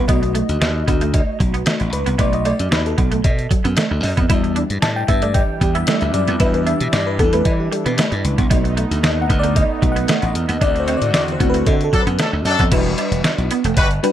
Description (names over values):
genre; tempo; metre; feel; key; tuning
early-eighties boogie funk; 114 BPM; 4/4; straight; E minor; A4 = 440 Hz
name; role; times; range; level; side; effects
FM electric piano with soft pad layer; accompaniment; 0.0-14.1 s; G3 to A5; -22 LUFS; left 2 dB; chorus, phaser
electric guitar at the edge of break-up; riff; 0.0-14.1 s; F#3 to E4; -25 LUFS; right 5 dB; ensemble chorus
slap bass; bass; 0.0-14.0 s; E1 to E3; -20 LUFS; equal; none
detuned 8-bit digital drum machine; drums; 0.1-14.1 s; crash cymbal, hi-hat, kick drum, snare drum; -19 LUFS; equal; none
cowbell; percussion; 0.1-13.9 s; none; -28 LUFS; right 2 dB; none
brassy analog pad; sustained chords; 4.3-12.7 s; D3 to F#4; -26 LUFS; right 1 dB; chorus
clear horn section; second line; 11.9-13.9 s; F#3 to B4; -21 LUFS; left 2 dB; none
room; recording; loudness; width
little or no reverb; dark, warm production; -15 LUFS; side -11 dB against mid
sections
0.0-12.7 A section; 12.7-14.1 B section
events
FM electric piano solo 0.0-12.7; band accent 10.6-12.7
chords
0.1 B7; 4.3 Em9; 8.5 B7; 10.6 D7; 12.7 Em9